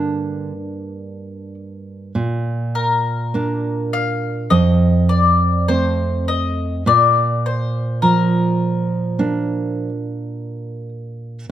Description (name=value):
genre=romantic duo for mandolin and classical guitar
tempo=51 BPM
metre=4/4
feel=rubato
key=unclear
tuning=A4 = 441 Hz
part: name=mandolin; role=melody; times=0.0-10.9 s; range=G4 to F5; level=-19 LUFS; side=left 6 dB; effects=none
part: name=nylon-string guitar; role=accompaniment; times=0.0-11.5 s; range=F2 to D4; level=-19 LUFS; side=right 2 dB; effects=none
room=light reverb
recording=close, detailed microphones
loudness=-16 LUFS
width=side -11 dB against mid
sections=0.0-11.5 A section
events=none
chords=0.0 Gm; 2.2 Bb; 4.5 F; 6.9 Bb